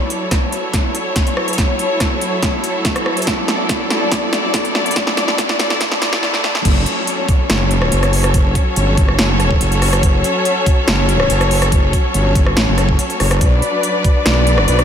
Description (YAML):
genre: heavy wobble dubstep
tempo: 142 BPM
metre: 4/4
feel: half-time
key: F# minor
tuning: A4 = 439 Hz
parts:
  - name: rich studio string section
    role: sustained chords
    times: 0.0-14.8 s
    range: F#3 to D5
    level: -18 LUFS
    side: left 1 dB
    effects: sidechain pumping
  - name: big-room dance drum kit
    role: drums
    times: 0.1-14.8 s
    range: crash cymbal, hi-hat, rim click, snare drum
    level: -18 LUFS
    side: equal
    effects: none
  - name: electronic kick drum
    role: drums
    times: 0.3-14.1 s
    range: none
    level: -16 LUFS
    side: equal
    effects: none
  - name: wobble bass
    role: bass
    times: 6.7-14.8 s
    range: F#1 to B1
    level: -16 LUFS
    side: equal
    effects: chorus, overdrive
room: moderate huge ambient reverb, RT60 8.8 s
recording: dreamy mix soaked in reverb, high-pass filter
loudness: -13 LUFS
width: side -8 dB against mid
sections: 0.0-6.7 A section; 6.7-14.8 B section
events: build-up 0.0-6.7; drum fill 0.0-6.2, 6.2-6.7; filter sweep 0.0-6.7; drop 6.7-14.8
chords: 0.0 F#m7; 3.3 Dadd9/F#; 6.7 F#m; 13.4 Bm